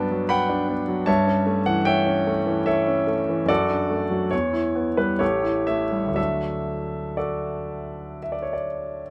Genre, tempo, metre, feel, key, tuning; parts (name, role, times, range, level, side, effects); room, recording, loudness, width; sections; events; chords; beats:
classical, romantic character piece for solo piano; 59-78 BPM; 3/4; rubato; D major; A4 = 439 Hz
bright grand piano; solo; 0.0-9.1 s; A1 to B5; -24 LUFS; equal
light reverb; close, detailed microphones; -23 LUFS; mono
0.0-9.1 A section
0.0 Gmaj7; 1.1 A7/G; 3.5 D/F#; 4.3 Em; 5.2 A7; 6.2 D
0.30 | 1.07 1.86 2.67 | 3.49 4.32 5.21 | 6.17 7.19 8.16